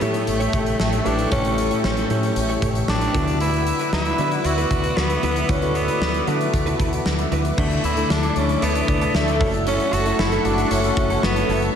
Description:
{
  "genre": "1980s-style pop",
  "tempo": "115 BPM",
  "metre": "4/4",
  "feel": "straight",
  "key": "unclear",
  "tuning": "A4 = 440 Hz",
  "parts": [
    { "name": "raspy tenor saxophone", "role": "melody", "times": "0.0-11.6 s", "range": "A3 to F#4", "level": "-24 LUFS", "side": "equal", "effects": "analog delay" },
    { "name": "tine electric piano", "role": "accompaniment", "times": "0.0-11.8 s", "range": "A2 to E5", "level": "-25 LUFS", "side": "left 4 dB", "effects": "none" },
    { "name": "lush unison pad", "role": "sustained chords", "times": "0.0-11.7 s", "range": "A4 to D6", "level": "-27 LUFS", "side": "equal", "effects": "chorus, phaser" },
    { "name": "direct-recorded clean electric guitar", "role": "riff", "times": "0.0-11.7 s", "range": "F#3 to C#5", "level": "-31 LUFS", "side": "right 4 dB", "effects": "none" },
    { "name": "mellow fretless electric bass", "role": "bass", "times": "0.0-11.7 s", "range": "F#1 to D3", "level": "-24 LUFS", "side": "equal", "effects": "none" },
    { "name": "big rock drum kit", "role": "drums", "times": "0.0-11.7 s", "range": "crash cymbal, hi-hat, kick drum, snare drum", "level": "-25 LUFS", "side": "equal", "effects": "none" }
  ],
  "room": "wet lush hall reverb, RT60 2.1 s",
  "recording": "dreamy mix soaked in reverb",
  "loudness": "-18 LUFS",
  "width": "side -8 dB against mid",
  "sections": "0.0-7.6 A section; 7.6-11.8 B section",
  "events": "none",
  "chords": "0.0 A7; 3.1 D69; 7.6 Dsus2; 9.4 F#m7",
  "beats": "0.28 0.80 | 1.32 1.84 2.36 2.88 | 3.41 3.93 4.45 4.97 | 5.49 6.01 6.54 7.06 | 7.58 8.10 8.62 9.15 | 9.67 10.19 10.71 11.23 | 11.75"
}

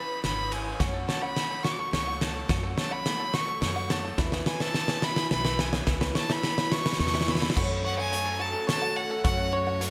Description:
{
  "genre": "indie folk with a building arrangement",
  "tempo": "107 BPM",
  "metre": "3/4",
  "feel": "straight",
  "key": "F# minor",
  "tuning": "A4 = 440 Hz",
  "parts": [
    { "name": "clear fiddle", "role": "melody", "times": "0.0-9.9 s", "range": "C#5 to D6", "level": "-34 LUFS", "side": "equal", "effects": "delay" },
    { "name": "fingerpicked steel-string acoustic guitar", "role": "accompaniment", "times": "0.0-0.8 s", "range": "D3 to B4", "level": "-44 LUFS", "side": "equal", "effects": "subtle chorus" },
    { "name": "picked twelve-string acoustic guitar", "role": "accompaniment", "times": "0.0-9.9 s", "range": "F#2 to A4", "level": "-38 LUFS", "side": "equal", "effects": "none" },
    { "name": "upright bass", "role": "bass", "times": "0.2-9.9 s", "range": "G#1 to F#2", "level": "-36 LUFS", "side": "equal", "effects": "none" },
    { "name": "loose indie drum kit", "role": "drums", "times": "0.2-9.9 s", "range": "crash cymbal, hi-hat, kick drum, ride cymbal, snare drum", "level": "-31 LUFS", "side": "equal", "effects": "gated reverb" },
    { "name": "bluegrass banjo", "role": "arpeggios", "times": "0.8-9.9 s", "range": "E4 to F#5", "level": "-39 LUFS", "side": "equal", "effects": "delay" },
    { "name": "rich studio string section", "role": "sustained chords", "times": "7.6-9.9 s", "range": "A3 to F#4", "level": "-42 LUFS", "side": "equal", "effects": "none" }
  ],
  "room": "moderate lush hall reverb, RT60 2.4 s",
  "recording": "bright 1980s-style digital production",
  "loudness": "-28 LUFS",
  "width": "mono",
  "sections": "0.0-7.6 A section; 7.6-9.9 B section",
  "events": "build-up 0.0-7.6; drum fill 0.0-7.6",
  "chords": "0.0 C#m7; 0.8 F#m; 4.2 E; 5.9 C#m7; 7.6 F#m",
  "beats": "0.24 | 0.81 1.37 1.93 | 2.50 3.06 3.62 | 4.19 4.75 5.31 | 5.88 6.44 7.00 | 7.56 8.12 8.69 | 9.25 9.81"
}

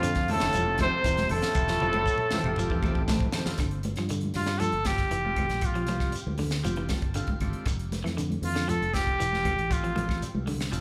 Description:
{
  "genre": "afrobeat",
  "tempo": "118 BPM",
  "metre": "4/4",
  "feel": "straight",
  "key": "unclear",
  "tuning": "A4 = 439 Hz",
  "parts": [
    { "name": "breathy trumpet", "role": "melody", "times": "0.0-3.1 s", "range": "F4 to C5", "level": "-30 LUFS", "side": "equal", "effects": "none" },
    { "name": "brilliant trombone section", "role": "second line", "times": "0.0-3.1 s", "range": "F2 to C3", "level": "-38 LUFS", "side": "equal", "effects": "none" },
    { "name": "raspy alto saxophone", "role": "second line", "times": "0.0-3.1 s", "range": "F4 to C5", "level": "-37 LUFS", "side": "equal", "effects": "none" },
    { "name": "electric guitar at the edge of break-up", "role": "arpeggios", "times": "0.0-10.8 s", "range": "A2 to F3", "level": "-37 LUFS", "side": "equal", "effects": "none" },
    { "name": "semi-hollow electric guitar", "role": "stabs", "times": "0.0-3.5 s", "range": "F3 to A4", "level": "-39 LUFS", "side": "equal", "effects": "spring reverb" },
    { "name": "fingered electric bass", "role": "bass", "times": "0.0-10.8 s", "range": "E1 to G2", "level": "-35 LUFS", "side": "equal", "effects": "none" },
    { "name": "tight funk drum kit", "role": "drums", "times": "0.0-10.8 s", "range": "hi-hat, kick drum, snare drum, toms", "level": "-34 LUFS", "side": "equal", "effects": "none" },
    { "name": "shekere", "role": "percussion", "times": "0.0-10.8 s", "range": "none", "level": "-43 LUFS", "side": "equal", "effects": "none" },
    { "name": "combo organ", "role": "accompaniment", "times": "0.3-10.8 s", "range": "G3 to A5", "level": "-42 LUFS", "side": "equal", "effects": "spring reverb" },
    { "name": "congas", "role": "percussion", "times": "0.3-10.6 s", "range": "none", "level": "-38 LUFS", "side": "equal", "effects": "none" },
    { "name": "claves", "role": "percussion", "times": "0.4-10.7 s", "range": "none", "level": "-50 LUFS", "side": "equal", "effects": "none" },
    { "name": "clear trumpet", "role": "melody", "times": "4.4-10.2 s", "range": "F4 to A4", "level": "-31 LUFS", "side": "equal", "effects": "none" }
  ],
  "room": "moderate large studio reverb, RT60 1.3 s",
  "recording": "band playing live in one room",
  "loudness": "-27 LUFS",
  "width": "mono",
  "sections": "0.0-3.6 A section; 3.6-10.8 B section",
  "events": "drum fill 1.6-3.6; trumpet solo 3.6-10.8; transistor combo organ fill 6.7-7.7",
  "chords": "0.0 Fmaj7; 3.6 G7sus2; 7.7 Fmaj7",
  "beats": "0.04 0.55 1.06 | 1.57 2.08 2.58 3.09 | 3.60 4.11 4.62 5.13 | 5.64 6.15 6.66 7.17 | 7.67 8.18 8.69 9.20 | 9.71 10.22 10.73"
}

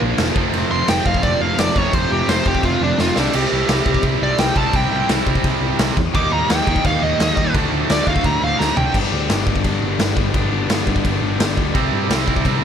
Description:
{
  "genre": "punk rock",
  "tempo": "171 BPM",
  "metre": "4/4",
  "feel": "straight",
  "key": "G major from 8.9 s",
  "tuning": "A4 = 441 Hz",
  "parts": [
    { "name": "high-gain distorted guitar", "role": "riff", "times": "0.0-12.6 s", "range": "F2 to G4", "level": "-25 LUFS", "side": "equal", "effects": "distortion" },
    { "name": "raw garage guitar", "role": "riff", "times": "0.0-12.6 s", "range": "F2 to F#4", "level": "-26 LUFS", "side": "left 14 dB", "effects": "overdrive" },
    { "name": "tight distorted guitar", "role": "riff", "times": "0.0-8.9, 11.7-12.6 s", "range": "F2 to Eb4", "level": "-24 LUFS", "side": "right 15 dB", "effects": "distortion" },
    { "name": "hollow-body short-scale picked electric bass", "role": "bass", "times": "0.0-12.6 s", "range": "E1 to G2", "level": "-23 LUFS", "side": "equal", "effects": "none" },
    { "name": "raw garage drum kit", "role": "drums", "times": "0.2-12.5 s", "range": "crash cymbal, kick drum, snare drum, toms", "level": "-20 LUFS", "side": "equal", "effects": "none" },
    { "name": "smooth overdriven lead guitar", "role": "melody", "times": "0.7-8.9 s", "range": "D4 to D6", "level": "-21 LUFS", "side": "equal", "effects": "ping-pong delay" }
  ],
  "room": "little or no reverb",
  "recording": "none",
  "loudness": "-15 LUFS",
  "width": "side -8 dB against mid",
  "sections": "0.0-8.9 A section; 8.9-12.6 B section",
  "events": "lead electric guitar solo 0.0-8.9; drum fill 3.0-3.3, 8.6-8.9",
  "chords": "0.4 F; 3.2 C; 6.1 Eb; 7.5 D7; 8.9 G; 11.8 C",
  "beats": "0.18 | 0.54 0.89 1.24 1.59 | 1.94 2.29 2.64 2.99 | 3.34 3.69 4.04 4.39 | 4.74 5.09 5.44 5.79 | 6.14 6.49 6.84 7.19 | 7.54 7.89 8.24 8.59 | 8.95 9.30 9.65 10.00 | 10.35 10.70 11.05 11.40 | 11.75 12.10 12.45"
}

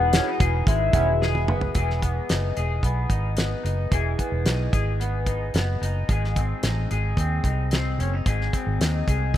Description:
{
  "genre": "indie pop, bedroom pop",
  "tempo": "111 BPM",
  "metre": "4/4",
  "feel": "straight",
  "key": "E major",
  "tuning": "A4 = 438 Hz",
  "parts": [
    { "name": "soft octave-layered synth lead", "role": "melody", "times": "0.0-1.4 s", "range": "E5 to F#5", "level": "-25 LUFS", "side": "left 4 dB", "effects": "phaser, lush chorus, tape echo" },
    { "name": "chorused retro synth keys", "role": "accompaniment", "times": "0.0-1.8 s", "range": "D#3 to B4", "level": "-32 LUFS", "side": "right 6 dB", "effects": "cassette tape" },
    { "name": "electric guitar through a small old amp", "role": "accompaniment", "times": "0.0-9.4 s", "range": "G#2 to G#4", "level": "-28 LUFS", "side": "left 3 dB", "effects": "lush chorus, warbly pitch drift" },
    { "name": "vintage muted fingered electric bass", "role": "bass", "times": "0.0-9.4 s", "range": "E1 to D#2", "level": "-24 LUFS", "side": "right 1 dB", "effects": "none" },
    { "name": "damped 70s drum kit", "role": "drums", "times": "0.1-9.4 s", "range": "hi-hat, kick drum, snare drum, toms", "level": "-24 LUFS", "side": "equal", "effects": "none" }
  ],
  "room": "small room ambience",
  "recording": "rough home demo mix",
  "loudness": "-21 LUFS",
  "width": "side -12 dB against mid",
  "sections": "0.0-1.8 A section; 1.8-9.4 B section",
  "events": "drum fill 1.2-1.8",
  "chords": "0.0 Emaj7; 1.8 Emaj9; 6.1 G#",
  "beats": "0.13 0.67 1.21 | 1.75 2.29 2.84 3.38 | 3.92 4.46 5.00 5.55 | 6.09 6.63 7.18 7.72 | 8.26 8.80 9.35"
}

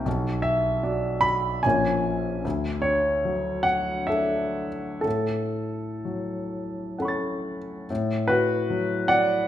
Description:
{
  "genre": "classical, impressionist solo piano",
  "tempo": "60-78 BPM",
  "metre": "3/4",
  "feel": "rubato",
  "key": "A major",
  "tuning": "A4 = 440 Hz",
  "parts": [
    { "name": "clear grand piano", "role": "solo", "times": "0.0-9.5 s", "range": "Bb1 to A6", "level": "-23 LUFS", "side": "equal", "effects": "none" }
  ],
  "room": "moderate recital hall reverb, RT60 1.4 s",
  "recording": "none",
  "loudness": "-23 LUFS",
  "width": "side -11 dB against mid",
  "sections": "0.0-7.9 A section; 7.9-9.5 B section",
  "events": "none",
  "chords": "0.1 Bm; 1.6 Bbm7; 2.4 Dmaj7; 5.0 A69; 7.9 Asus2",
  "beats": "| 0.06 0.84 1.64 | 2.45 3.25 4.10 | 5.05 6.03 6.98 | 7.89 8.70"
}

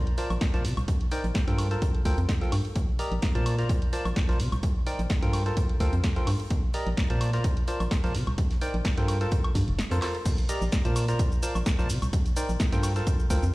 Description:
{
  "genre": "piano house",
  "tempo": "128 BPM",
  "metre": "4/4",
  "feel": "swing 54% on 16ths",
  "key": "unclear",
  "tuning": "A4 = 440 Hz",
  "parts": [
    { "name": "punchy analog drum machine", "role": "drums", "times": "0.1-13.5 s", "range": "crash cymbal, handclaps, hi-hat, shaker, snare drum, woodblock", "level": "-34 LUFS", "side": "equal", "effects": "none" },
    { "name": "percussive organ stab", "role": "riff", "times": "0.2-13.4 s", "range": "Eb4 to Bb5", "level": "-33 LUFS", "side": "equal", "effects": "chorus, sidechain pumping, digital delay" },
    { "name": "damped 70s drum kit", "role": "drums", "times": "0.2-13.5 s", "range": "hi-hat, snare drum", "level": "-46 LUFS", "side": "right 2 dB", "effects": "high-pass filter on hats, high-pass filter on snare, high-pass filter on room" },
    { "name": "organ-like FM bass", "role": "bass", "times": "0.3-13.5 s", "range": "F1 to C3", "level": "-27 LUFS", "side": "equal", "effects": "sidechain pumping" },
    { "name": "electronic kick drum", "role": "drums", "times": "0.4-13.4 s", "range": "none", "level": "-26 LUFS", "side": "equal", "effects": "none" }
  ],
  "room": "light reverb",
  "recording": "played on a big sound system in a bare room, stone room reverb",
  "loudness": "-24 LUFS",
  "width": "side -20 dB against mid",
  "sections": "0.0-10.3 A section; 10.3-13.5 B section",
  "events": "break 9.8-10.3; drum fill 10.0; drop 10.3-13.5",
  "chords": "0.0 Bbmaj9; 0.6 Cm9; 1.6 Gm11; 2.8 Ebmaj7; 3.5 Bbmaj9; 4.4 Cm9; 5.3 Gm11; 6.5 Ebmaj7; 7.2 Bbmaj9; 8.1 Cm9; 9.1 Gm11; 10.3 Ebmaj7; 11.0 Bbmaj9; 11.9 Cm9; 12.8 Gm11",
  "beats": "0.41 | 0.88 1.35 1.82 2.29 | 2.76 3.23 3.69 4.16 | 4.63 5.10 5.57 6.04 | 6.51 6.97 7.44 7.91 | 8.38 8.85 9.32 9.79 | 10.26 10.72 11.19 11.66 | 12.13 12.60 13.07"
}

